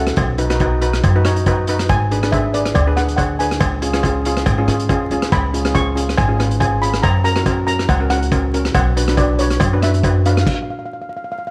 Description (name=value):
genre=calypso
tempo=140 BPM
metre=4/4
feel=swing 54% on 16ths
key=unclear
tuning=A4 = 440 Hz
part: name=steel pan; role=melody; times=0.0-11.5 s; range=C#5 to C#6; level=-25 LUFS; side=equal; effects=none
part: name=steel pan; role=accompaniment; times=0.0-10.5 s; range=C#4 to C#5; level=-23 LUFS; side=equal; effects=none
part: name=upright bass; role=bass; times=0.0-10.4 s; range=G#1 to G#2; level=-21 LUFS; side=equal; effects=none
part: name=vintage drum kit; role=drums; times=0.1-10.6 s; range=crash cymbal, hi-hat, kick drum, rim click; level=-23 LUFS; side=equal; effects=none
part: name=cowbell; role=percussion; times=0.2-10.1 s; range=none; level=-28 LUFS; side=equal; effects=none
room=moderate recital hall reverb, RT60 1.3 s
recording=vinyl crackle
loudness=-17 LUFS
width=mono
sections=0.0-11.5 A section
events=stop 10.5-11.5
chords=0.2 B; 1.9 G#dim; 3.6 C#; 7.0 F#; 8.7 Bmadd9; 10.5 N.C.